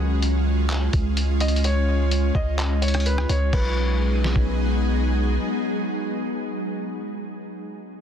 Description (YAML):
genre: hip hop, atmospheric cloud-rap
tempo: 127 BPM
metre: 4/4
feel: half-time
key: B lydian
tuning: A4 = 439 Hz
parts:
  - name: ethereal airy pad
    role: sustained chords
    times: 0.0-7.2 s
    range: F#3 to G#4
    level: -26 LUFS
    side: equal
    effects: ensemble chorus, built-in reverb, sidechain pumping
  - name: long sustained 808-style bass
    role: bass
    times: 0.0-5.4 s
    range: B1 to C#2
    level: -22 LUFS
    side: equal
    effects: none
  - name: lo-fi sampler-style drum kit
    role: drums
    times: 0.2-4.5 s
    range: crash cymbal, handclaps, hi-hat, kick drum, rim click, snare drum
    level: -26 LUFS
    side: equal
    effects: soft clipping on snare
  - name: felt-muted upright piano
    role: melody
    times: 1.4-4.9 s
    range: B4 to D#5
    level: -31 LUFS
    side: equal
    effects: ping-pong delay
room: little or no reverb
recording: dense, heavily limited modern master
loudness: -20 LUFS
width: side -8 dB against mid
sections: 0.0-3.5 A section; 3.5-7.3 B section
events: none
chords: 0.0 C#; 3.5 B6